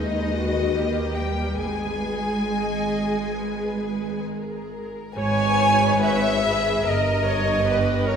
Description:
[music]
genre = classical, slow romantic movement for string orchestra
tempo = 66-74 BPM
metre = 4/4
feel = rubato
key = G# minor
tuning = A4 = 440 Hz
[part]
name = rich studio violin section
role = melody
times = 0.0-8.2 s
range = G4 to G#5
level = -30 LUFS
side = left 4 dB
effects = none
[part]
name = warm chamber violin section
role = second line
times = 0.0-8.2 s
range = A#4 to G#5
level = -25 LUFS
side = left 1 dB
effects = none
[part]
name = rich studio viola section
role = accompaniment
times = 0.0-8.2 s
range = G#3 to C#5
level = -27 LUFS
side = left 1 dB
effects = none
[part]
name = clear symphonic cello section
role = bass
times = 0.0-8.2 s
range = G2 to G#3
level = -28 LUFS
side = right 2 dB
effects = none
[part]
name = rich symphonic double bass section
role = bass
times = 0.0-8.2 s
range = G1 to D#2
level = -28 LUFS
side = right 2 dB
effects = none
[sound]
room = wet scoring stage reverb, RT60 1.9 s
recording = heard from further back in the room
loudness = -20 LUFS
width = side -7 dB against mid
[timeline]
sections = 0.0-5.2 A section; 5.2-8.2 B section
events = none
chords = 0.0 G#m/D#; 0.7 D#; 1.6 G#m; 6.8 D#/G

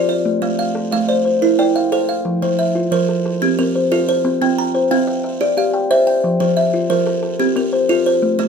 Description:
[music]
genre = southern african traditional, mbira-style interlocking cycle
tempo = 121 BPM (dotted quarters)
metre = 12/8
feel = straight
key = F major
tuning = A4 = 440 Hz
[part]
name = buzzing kalimba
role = arpeggios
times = 0.0-8.5 s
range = F3 to Bb5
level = -17 LUFS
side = right 4 dB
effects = none
[part]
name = kalimba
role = arpeggios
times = 0.0-8.5 s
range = F3 to G5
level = -17 LUFS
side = left 4 dB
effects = none
[sound]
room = moderate small room reverb, RT60 0.5 s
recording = none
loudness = -14 LUFS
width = side -6 dB against mid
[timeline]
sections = 0.0-2.3 A section; 2.3-8.5 B section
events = none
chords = 0.3 Am; 2.3 F; 4.2 C; 6.2 F

